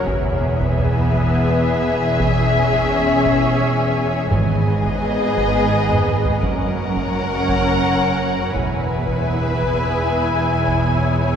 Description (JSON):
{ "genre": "cinematic, suspense film score", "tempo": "85 BPM", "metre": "3/4", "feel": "straight", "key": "unclear", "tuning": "A4 = 440 Hz", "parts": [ { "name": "muted symphonic violin section", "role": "melody", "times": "0.0-11.4 s", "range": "D#5 to G#5", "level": "-24 LUFS", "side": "left 4 dB", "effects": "none" }, { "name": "muted symphonic violin section", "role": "second line", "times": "0.0-11.4 s", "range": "G#4 to C#5", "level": "-24 LUFS", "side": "left 2 dB", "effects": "none" }, { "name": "muted symphonic viola section", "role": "accompaniment", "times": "0.0-11.4 s", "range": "B3 to E4", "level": "-25 LUFS", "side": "equal", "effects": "none" }, { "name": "evolving wavetable pad", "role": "sustained chords", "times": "0.0-11.4 s", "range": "G#4 to G#5", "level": "-28 LUFS", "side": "left 1 dB", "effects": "ensemble chorus, built-in reverb" }, { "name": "muted chamber double bass section", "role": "bass", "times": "0.0-11.4 s", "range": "E1 to G#1", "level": "-23 LUFS", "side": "right 2 dB", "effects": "none" }, { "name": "muted symphonic cello section", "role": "bass", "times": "0.0-11.4 s", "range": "E2 to G#2", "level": "-25 LUFS", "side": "right 2 dB", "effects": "none" }, { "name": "bowed-like drone", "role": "drone", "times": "0.0-11.4 s", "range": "F#1 to E2", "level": "-26 LUFS", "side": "equal", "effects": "built-in reverb" }, { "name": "taiko ensemble", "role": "drums", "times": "0.1-11.4 s", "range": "none", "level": "-28 LUFS", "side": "equal", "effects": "none" }, { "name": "timpani", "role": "percussion", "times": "4.3-5.3 s", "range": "G#2", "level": "-25 LUFS", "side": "equal", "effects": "none" } ], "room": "wet church reverb, RT60 2.9 s", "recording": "recorded in a church or concert hall", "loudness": "-16 LUFS", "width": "side -8 dB against mid", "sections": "0.0-11.4 A section", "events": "drum fill 5.9-6.4", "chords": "0.1 E; 2.2 C#m/E; 4.3 G#m; 6.4 F#; 8.5 E; 10.7 C#m/E" }